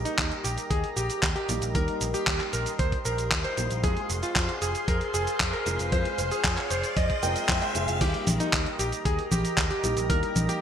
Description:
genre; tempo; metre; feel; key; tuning
italo disco; 115 BPM; 4/4; straight; unclear; A4 = 440 Hz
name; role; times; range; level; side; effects
lush unison pad; sustained chords; 0.0-10.6 s; G4 to C6; -35 LUFS; right 1 dB; chorus
dark baby grand piano; stabs; 0.0-10.6 s; G3 to C5; -37 LUFS; left 1 dB; ensemble chorus
picked electric bass; bass; 0.0-10.5 s; F1 to F2; -32 LUFS; equal; tube saturation
riser; sound effects; 2.6-8.0 s; none; -37 LUFS; equal; none
bright electric grand piano; melody; 0.1-10.6 s; Eb4 to G5; -30 LUFS; equal; wide subtle chorus, low-pass filter, digital delay
dusty soul sampler-style drum kit; drums; 0.1-10.6 s; cabasa, congas, crash cymbal, handclaps, hi-hat; -29 LUFS; equal; gated reverb
electronic kick drum; drums; 0.2-10.2 s; none; -29 LUFS; equal; none
room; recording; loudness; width
moderate plate reverb, RT60 2.1 s; bright 1980s-style digital production; -24 LUFS; side -8 dB against mid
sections
0.0-8.0 A section; 8.0-10.6 B section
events
riser 2.6-8.0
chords
0.0 Eb; 3.8 Fm; 8.0 Eb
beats
0.18 0.70 1.23 | 1.75 2.27 2.79 3.31 | 3.84 4.36 4.88 5.40 | 5.92 6.44 6.97 7.49 | 8.01 8.53 9.05 9.57 | 10.10

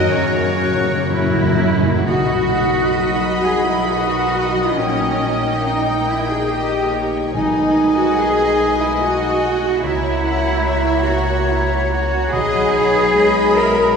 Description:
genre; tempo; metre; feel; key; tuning
classical; 58-74 BPM; 3/4; rubato; B major; A4 = 440 Hz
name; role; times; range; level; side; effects
warm symphonic violin section; melody; 0.0-14.0 s; B4 to G5; -29 LUFS; left 3 dB; none
clear oboe; second line; 0.0-14.0 s; A#4 to D#5; -25 LUFS; equal; none
hollow concert flute; second line; 0.0-14.0 s; F#5 to F#6; -25 LUFS; left 1 dB; none
warm clarinet; second line; 0.0-14.0 s; C#4 to A#4; -28 LUFS; left 2 dB; none
warm studio violin section; second line; 0.0-14.0 s; C#4 to B5; -27 LUFS; left 2 dB; none
mellow bassoon; accompaniment; 0.0-14.0 s; D#3 to F#3; -27 LUFS; right 1 dB; none
rich symphonic viola section; accompaniment; 0.0-14.0 s; F#3 to F#4; -28 LUFS; right 1 dB; none
concert harp; arpeggios; 0.0-14.0 s; F#2 to A#5; -27 LUFS; left 4 dB; none
warm symphonic cello section; bass; 0.0-14.0 s; C#3 to A#4; -20 LUFS; right 3 dB; none
timpani; percussion; 0.0-2.0, 7.3-13.6 s; F#2 to B2; -24 LUFS; left 1 dB; none
rich symphonic double bass section; bass; 0.1-14.0 s; A#1 to F#2; -25 LUFS; right 2 dB; none
warm French horn section; sustained chords; 1.1-14.0 s; C#4 to A#4; -23 LUFS; left 4 dB; none
room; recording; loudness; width
wet church reverb, RT60 2.9 s; recorded in a church or concert hall; -15 LUFS; side -6 dB against mid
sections
0.0-2.1 A section; 2.1-14.0 B section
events
timpani fill 0.0-2.1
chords
0.0 F#; 2.1 B; 4.8 D#7/A#; 7.3 G#m/B; 9.8 F#7/C#; 12.3 B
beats
0.10 1.11 | 2.08 2.99 3.88 | 4.77 5.66 6.51 | 7.34 8.18 9.01 | 9.84 10.67 11.51 | 12.33 13.17

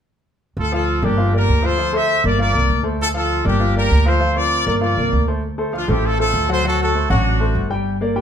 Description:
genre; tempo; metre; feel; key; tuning
latin, salsa; 198 BPM; 4/4; straight; D minor; A4 = 437 Hz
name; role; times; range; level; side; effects
brilliant trumpet section; melody; 0.6-8.2 s; D4 to E5; -20 LUFS; left 1 dB; none
upright bass; bass; 0.6-8.2 s; G1 to D2; -19 LUFS; right 1 dB; none
clear baby grand piano; accompaniment; 0.7-8.2 s; F3 to G5; -22 LUFS; left 2 dB; none
room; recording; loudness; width
moderate large studio reverb, RT60 0.9 s; band playing live in one room; -15 LUFS; side -8 dB against mid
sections
0.6-5.4 A section; 5.4-8.2 B section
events
none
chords
0.6 Dm; 1.8 Gm7; 5.4 Dm7; 6.6 D7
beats
| 0.57 0.87 1.18 1.48 | 1.78 2.09 2.39 2.70 | 3.00 3.30 3.61 3.91 | 4.21 4.52 4.82 5.13 | 5.43 5.73 6.04 6.34 | 6.64 6.95 7.25 7.55 | 7.86 8.16

